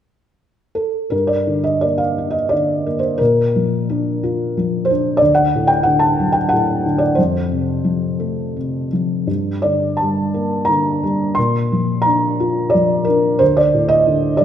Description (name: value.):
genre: classical, lyrical solo piano.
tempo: 82-93 BPM.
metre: 3/4.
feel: rubato.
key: G minor.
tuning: A4 = 443 Hz.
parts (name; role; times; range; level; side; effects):
felt-muted upright piano; solo; 0.8-14.4 s; D2 to C6; -15 LUFS; equal; none.
room: moderate scoring stage reverb, RT60 1.6 s.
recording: recorded in a church or concert hall.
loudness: -15 LUFS.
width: side -9 dB against mid.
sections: 0.0-1.1 A section; 1.1-14.4 B section.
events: none.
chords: 0.0 N.C.; 1.1 Gm; 3.2 Bb; 5.2 D; 7.2 F; 9.3 Gmadd9; 11.4 Bb; 13.4 D5.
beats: 0.44 | 1.12 1.83 2.53 | 3.20 3.88 4.55 | 5.21 5.86 6.52 | 7.18 7.85 8.56 | 9.29 10.00 10.69 | 11.37 12.05 12.73 | 13.41 14.07.